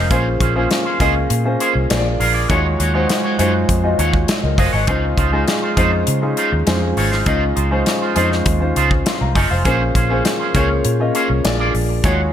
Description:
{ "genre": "polished 1980s jazz-funk pop", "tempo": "101 BPM", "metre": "4/4", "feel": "straight", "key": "unclear", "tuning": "A4 = 439 Hz", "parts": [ { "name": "warm concert grand piano", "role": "accompaniment", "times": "0.0-12.3 s", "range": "Ab3 to C6", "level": "-19 LUFS", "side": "left 1 dB", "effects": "lush chorus" }, { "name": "electric guitar with an envelope filter", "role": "riff", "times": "0.0-12.2 s", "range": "Db4 to F5", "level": "-22 LUFS", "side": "right 3 dB", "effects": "wide subtle chorus" }, { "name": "vintage muted fingered electric bass", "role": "bass", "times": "0.0-12.3 s", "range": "F1 to Db3", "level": "-19 LUFS", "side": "equal", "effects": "none" }, { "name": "modern studio drum kit", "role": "drums", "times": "0.1-12.2 s", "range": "hi-hat, kick drum, snare drum", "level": "-20 LUFS", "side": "equal", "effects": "gated reverb" } ], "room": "moderate plate reverb, RT60 2.2 s", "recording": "bright 1980s-style digital production", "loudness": "-14 LUFS", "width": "side -10 dB against mid", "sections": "0.0-12.3 A section", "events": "none", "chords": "0.1 Bbm9; 1.9 Bb7; 2.5 Ebm11; 4.9 Dbmaj9; 9.7 Bbm9; 11.4 Bb7" }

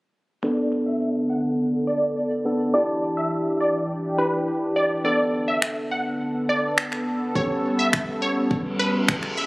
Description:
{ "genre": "dance-pop", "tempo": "104 BPM", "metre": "4/4", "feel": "straight", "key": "B minor", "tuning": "A4 = 440 Hz", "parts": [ { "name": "wide unison pluck", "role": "melody", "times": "0.4-9.5 s", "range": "B4 to F#5", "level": "-25 LUFS", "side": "equal", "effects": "phaser, sidechain pumping, low-pass filter, tape echo" }, { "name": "barky tine electric piano", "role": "accompaniment", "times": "0.4-9.5 s", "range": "B3 to A4", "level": "-25 LUFS", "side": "equal", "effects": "sidechain pumping, low-pass filter" }, { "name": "sweeping resonant pad", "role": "sustained chords", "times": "0.4-9.5 s", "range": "D3 to A4", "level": "-27 LUFS", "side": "equal", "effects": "chorus, sidechain pumping, low-pass filter" }, { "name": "deep house drum kit", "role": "drums", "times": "5.6-9.4 s", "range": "finger snaps, kick drum", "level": "-23 LUFS", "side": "equal", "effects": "none" }, { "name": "reverse cymbal", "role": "sound effects", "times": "8.7-9.5 s", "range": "none", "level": "-30 LUFS", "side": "equal", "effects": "none" } ], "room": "moderate lush hall reverb, RT60 1.9 s", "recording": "recorded on a phone in the room, club reverb", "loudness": "-21 LUFS", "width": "side -22 dB against mid", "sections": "0.4-9.5 A section", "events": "filter sweep 0.4-9.5; reverse cymbal 8.7-9.5", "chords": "0.4 Bm7; 2.7 Em7; 5.0 Bm7; 7.4 A9" }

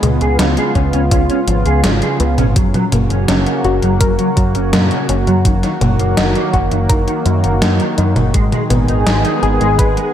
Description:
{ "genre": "synthwave", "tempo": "83 BPM", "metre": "4/4", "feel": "straight", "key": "G# minor", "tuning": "A4 = 440 Hz", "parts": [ { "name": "lush unison pad", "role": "sustained chords", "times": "0.0-10.1 s", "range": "C#3 to G#4", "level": "-18 LUFS", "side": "equal", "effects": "chorus, sidechain pumping" }, { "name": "soft round pluck", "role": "arpeggios", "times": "0.0-10.0 s", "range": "E#3 to B4", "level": "-22 LUFS", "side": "left 3 dB", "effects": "chorus, cassette tape, tape echo" }, { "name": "deep dub picked electric bass", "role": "bass", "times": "0.0-10.0 s", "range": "F#1 to F#2", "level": "-16 LUFS", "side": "equal", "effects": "none" }, { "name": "gated 80s digital drum machine", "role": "drums", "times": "0.0-10.1 s", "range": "hi-hat, snare drum, toms", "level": "-19 LUFS", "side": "equal", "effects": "gated reverb, gated reverb snare, overdrive" }, { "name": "mellow electric guitar", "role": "riff", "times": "0.2-10.1 s", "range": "D#3 to G#4", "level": "-21 LUFS", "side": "right 1 dB", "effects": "ensemble chorus, tape echo" }, { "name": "electronic kick drum", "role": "drums", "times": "0.8-9.9 s", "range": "none", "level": "-16 LUFS", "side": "equal", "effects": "overdrive" } ], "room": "light reverb", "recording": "none", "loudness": "-12 LUFS", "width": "side -10 dB against mid", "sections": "0.0-10.1 A section", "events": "none", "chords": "0.0 C#7; 2.6 F#; 5.5 D#m/F#; 8.3 G#m" }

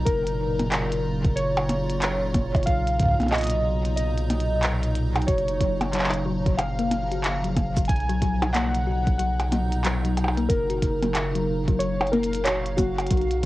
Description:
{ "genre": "IDM", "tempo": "92 BPM", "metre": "4/4", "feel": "swing 62% on 16ths", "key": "F# major", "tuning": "A4 = 442 Hz", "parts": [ { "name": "icy glass pad", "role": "sustained chords", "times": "0.0-13.5 s", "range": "A#2 to A#5", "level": "-30 LUFS", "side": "right 1 dB", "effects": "chorus, built-in reverb, sidechain pumping, cassette tape" }, { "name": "round analog bass", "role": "bass", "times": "0.0-13.5 s", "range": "F#1 to B1", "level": "-27 LUFS", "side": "equal", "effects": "none" }, { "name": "warbly lo-fi synth keys", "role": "melody", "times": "0.1-13.5 s", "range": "F#4 to G#5", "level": "-27 LUFS", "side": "equal", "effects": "chorus, cassette tape" }, { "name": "electronic kick drum", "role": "drums", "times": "0.1-13.5 s", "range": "none", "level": "-23 LUFS", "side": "equal", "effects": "cassette tape" }, { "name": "glitchy drum kit", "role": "drums", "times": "0.1-13.5 s", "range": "handclaps, hi-hat, percussion blips, shaker", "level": "-27 LUFS", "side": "equal", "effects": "cassette tape" }, { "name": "thumb-piano-like synth pluck", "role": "arpeggios", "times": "5.3-13.5 s", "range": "F#3 to F#4", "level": "-30 LUFS", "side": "left 5 dB", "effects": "chorus, vintage 12-bit sampler grit, cassette tape, tape echo" } ], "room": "moderate booth ambience, RT60 0.3 s", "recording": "home recording on cassette", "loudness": "-21 LUFS", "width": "side -17 dB against mid", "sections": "0.0-13.5 A section", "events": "none", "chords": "0.1 F#maj7; 2.7 Bmaj7; 5.3 F#maj7; 7.9 Bmaj7; 10.5 F#maj7" }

